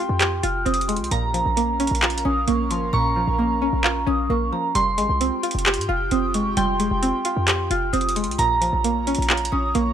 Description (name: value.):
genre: hip hop, trap.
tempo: 132 BPM.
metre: 4/4.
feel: half-time.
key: F minor.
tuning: A4 = 441 Hz.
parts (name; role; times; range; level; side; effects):
vibraphone with medium hard mallets; melody; 0.0-9.9 s; Bb5 to F6; -25 LUFS; right 2 dB; tape echo.
soft synth bell; second line; 0.0-9.9 s; G5 to Db6; -29 LUFS; equal; chorus, tape echo.
string-like resonator pluck; accompaniment; 0.0-9.9 s; Bb2 to G4; -24 LUFS; right 1 dB; chorus, phaser.
airy breathy pad; sustained chords; 0.0-9.9 s; Db4 to Bb5; -31 LUFS; right 1 dB; chorus.
short 808-style bass; bass; 0.1-9.9 s; F1 to Ab2; -26 LUFS; equal; none.
trap drum kit; drums; 0.2-9.9 s; handclaps, hi-hat; -24 LUFS; equal; vintage 12-bit sampler grit.
room: light reverb.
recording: dry, gritty hardware recording.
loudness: -19 LUFS.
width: side -9 dB against mid.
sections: 0.0-9.9 A section.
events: hi-hats muted 2.9-4.8.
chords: 0.0 Fmadd9; 1.1 Bbm; 4.8 Fmadd9; 8.4 Bbm.